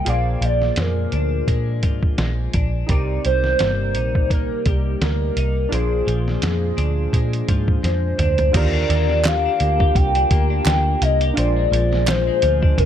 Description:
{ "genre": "indie pop, bedroom pop", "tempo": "85 BPM", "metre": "4/4", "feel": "swing 55% on 16ths", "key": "unclear", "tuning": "A4 = 440 Hz", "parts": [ { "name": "hollow clarinet-like synth lead", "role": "melody", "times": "0.0-12.9 s", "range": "G4 to G5", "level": "-22 LUFS", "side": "equal", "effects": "lush chorus, tape echo" }, { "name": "twelve-string electric guitar", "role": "accompaniment", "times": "0.0-12.9 s", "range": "Bb2 to G4", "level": "-28 LUFS", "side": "left 7 dB", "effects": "lush chorus, vibrato effect" }, { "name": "warm analog keys", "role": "accompaniment", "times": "0.0-12.9 s", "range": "D3 to D5", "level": "-30 LUFS", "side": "right 3 dB", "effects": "chorus, cassette tape" }, { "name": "vintage muted picked electric bass", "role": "bass", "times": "0.1-12.9 s", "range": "G1 to Bb2", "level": "-20 LUFS", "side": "equal", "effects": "none" }, { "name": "lo-fi sampler-style drum kit", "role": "drums", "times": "0.1-12.9 s", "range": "crash cymbal, hi-hat, kick drum, snare drum, toms", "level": "-21 LUFS", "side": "equal", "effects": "none" }, { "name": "dark brass ensemble", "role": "sustained chords", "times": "8.5-12.9 s", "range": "D3 to G4", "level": "-30 LUFS", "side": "left 1 dB", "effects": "stereo widening" }, { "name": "group handclap", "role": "percussion", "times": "9.2-12.3 s", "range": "none", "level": "-30 LUFS", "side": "right 5 dB", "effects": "none" } ], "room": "digital ambience", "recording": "none", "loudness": "-17 LUFS", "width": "side -10 dB against mid", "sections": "0.0-8.5 A section; 8.5-12.9 B section", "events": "drum fill 7.8-8.5", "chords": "0.1 Bb7; 2.9 Cm7; 5.7 Bb7; 8.5 Ebmaj7; 11.4 Bb7", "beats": "| 0.07 0.77 1.48 2.19 | 2.89 3.60 4.31 5.01 | 5.72 6.43 7.13 7.84 | 8.55 9.25 9.96 10.67 | 11.37 12.08 12.78" }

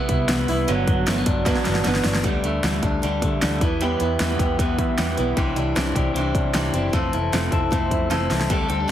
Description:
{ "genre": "jangly indie pop", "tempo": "153 BPM", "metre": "4/4", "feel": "straight", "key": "unclear", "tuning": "A4 = 440 Hz", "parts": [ { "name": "picked acoustic archtop guitar", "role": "accompaniment", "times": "0.0-8.9 s", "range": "G2 to A4", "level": "-25 LUFS", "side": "right 4 dB", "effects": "none" }, { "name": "electric guitar through a small old amp", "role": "arpeggios", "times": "0.0-8.9 s", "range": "E3 to A4", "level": "-25 LUFS", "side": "left 4 dB", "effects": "spring reverb, analog delay" }, { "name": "vintage muted fingered electric bass", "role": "bass", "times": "0.1-8.9 s", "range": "F1 to E3", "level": "-26 LUFS", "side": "equal", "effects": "none" }, { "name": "pop drum kit", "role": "drums", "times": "0.1-8.9 s", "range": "hi-hat, kick drum, snare drum", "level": "-24 LUFS", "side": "equal", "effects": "none" } ], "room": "light reverb", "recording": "heavily compressed radio sound, multiband compression", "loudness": "-19 LUFS", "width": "side -11 dB against mid", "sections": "0.0-2.2 A section; 2.2-8.9 B section", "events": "drum fill 1.5-2.2, 8.1-8.5", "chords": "0.0 Cmaj7; 0.7 Gmaj7; 2.2 Dsus4; 3.6 Em; 5.4 Cadd9; 6.9 Fmaj7", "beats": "0.29 | 0.68 1.07 1.46 1.85 | 2.24 2.63 3.03 3.42 | 3.81 4.20 4.59 4.98 | 5.37 5.76 6.16 6.55 | 6.94 7.33 7.72 8.11 | 8.50 8.89" }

